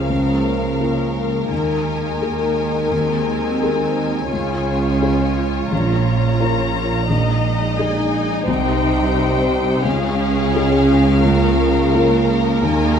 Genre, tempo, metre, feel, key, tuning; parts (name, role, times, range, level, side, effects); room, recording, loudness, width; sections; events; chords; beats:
cinematic; 86 BPM; 4/4; rubato; A4 = 435 Hz
rich studio violin section; melody; 0.0-13.0 s; F5 to Bb5; -27 LUFS; left 6 dB
warm studio violin section; second line; 0.0-13.0 s; Ab4 to Eb5; -26 LUFS; left 2 dB
felt-muted upright piano; accompaniment; 0.0-13.0 s; Bb1 to Eb5; -22 LUFS; left 2 dB
rich studio viola section; accompaniment; 0.0-13.0 s; Bb3 to F4; -25 LUFS; right 1 dB
dark French horn section; sustained chords; 0.0-13.0 s; F3 to Bb4; -24 LUFS; left 2 dB
rich studio cello section; bass; 0.0-13.0 s; Bb2 to Eb3; -23 LUFS; right 1 dB
rich studio double bass section; bass; 0.0-13.0 s; Bb1 to Eb2; -22 LUFS; right 4 dB
moderate scoring stage reverb, RT60 2.1 s; dark, warm production; -15 LUFS; side -8 dB against mid
0.0-13.0 A section
0.1 Bbm/Db; 1.5 Ebsus4; 2.9 Abadd9/Eb; 4.3 Db; 5.7 Bbm; 7.1 Ebsus4/Bb; 8.5 Cm; 9.8 Db; 11.2 Bbm/Db
| 0.10 0.81 1.51 2.22 | 2.92 3.63 4.33 5.02 | 5.71 6.40 7.10 7.79 | 8.48 9.16 9.85 10.55 | 11.24 11.94 12.63